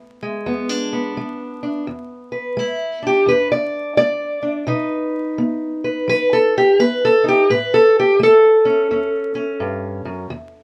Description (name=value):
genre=acoustic country blues, solo or duo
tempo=85 BPM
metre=4/4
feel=swing 64% on 8ths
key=E mixolydian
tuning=A4 = 440 Hz
part: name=fingerpicked steel-string acoustic guitar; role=solo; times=0.0-10.6 s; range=E2 to D5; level=-18 LUFS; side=equal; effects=none
room=light reverb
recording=vinyl crackle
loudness=-17 LUFS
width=mono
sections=0.0-10.6 A section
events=steel-string acoustic guitar solo 0.0-10.6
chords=0.0 E7; 4.7 B; 7.5 A7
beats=0.48 1.18 | 1.88 2.58 3.29 3.99 | 4.69 5.40 6.10 6.80 | 7.50 8.21 8.91 9.61 | 10.31